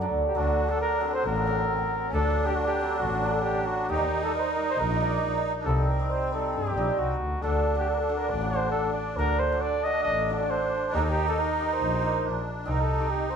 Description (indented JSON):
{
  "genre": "klezmer",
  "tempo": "137 BPM",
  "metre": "4/4",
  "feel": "straight",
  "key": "D phrygian dominant",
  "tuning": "A4 = 440 Hz",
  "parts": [
    { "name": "hammered dulcimer", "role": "accompaniment", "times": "0.0-13.4 s", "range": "F#3 to D5", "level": "-29 LUFS", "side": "right 2 dB", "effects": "none" },
    { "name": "warm double bass", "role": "bass", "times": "0.0-12.8 s", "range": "A1 to G2", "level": "-30 LUFS", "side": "left 1 dB", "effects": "none" },
    { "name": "breathy cornet", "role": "melody", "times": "0.3-13.4 s", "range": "F#4 to Eb5", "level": "-29 LUFS", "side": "equal", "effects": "none" },
    { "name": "musette accordion", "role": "second line", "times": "0.4-13.4 s", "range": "C4 to Eb4", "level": "-31 LUFS", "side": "right 2 dB", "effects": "none" }
  ],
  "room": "moderate stone room reverb, RT60 1.1 s",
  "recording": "band playing live in one room",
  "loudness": "-24 LUFS",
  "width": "side -7 dB against mid",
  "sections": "0.3-13.4 A section",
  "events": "speeding up 0.0-13.4",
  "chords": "0.3 D; 3.9 Eb; 5.7 Cm; 7.4 D; 10.9 Eb; 12.7 Cm"
}